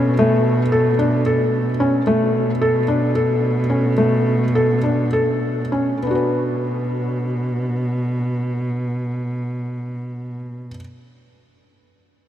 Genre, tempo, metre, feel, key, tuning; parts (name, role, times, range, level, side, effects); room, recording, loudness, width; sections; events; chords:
contemporary instrumental, chamber music in an uneven meter; 193-224 BPM (eighths); 7/8; straight; B minor; A4 = 440 Hz
felt-muted upright piano; arpeggios; 0.0-10.8 s; A3 to B4; -19 LUFS; left 1 dB
dark cello; bass; 0.0-10.7 s; B2; -21 LUFS; right 1 dB
wet huge ambient reverb, RT60 7.8 s; in a vast, echoing space; -17 LUFS; side -11 dB against mid
0.0-6.0 A section; 6.0-10.4 B section
slowing down 2.1-6.0
0.0 B7sus2; 6.0 Bm